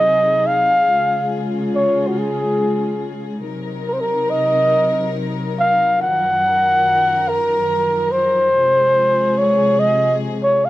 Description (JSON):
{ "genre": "folk", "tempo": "47 BPM (dotted quarters)", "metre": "6/8", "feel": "straight", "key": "Eb dorian", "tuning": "A4 = 444 Hz", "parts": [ { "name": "breathy flugelhorn", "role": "melody", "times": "0.0-10.7 s", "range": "Gb4 to Gb5", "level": "-15 LUFS", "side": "equal", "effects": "none" }, { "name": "dark chamber string section", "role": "sustained chords", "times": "0.0-10.7 s", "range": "Gb2 to Bb4", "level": "-22 LUFS", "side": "left 2 dB", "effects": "none" } ], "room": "small room ambience", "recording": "dry, close 1970s-style studio recording", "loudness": "-14 LUFS", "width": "side -16 dB against mid", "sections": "0.0-10.7 A section", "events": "none", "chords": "0.0 Ab7; 0.9 Db; 3.4 Cm7b5; 6.0 Ebmadd9/Gb; 8.5 Fm", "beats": "| 0.88 2.15 | 3.44 4.73 | 6.00 7.27 | 8.53 9.79" }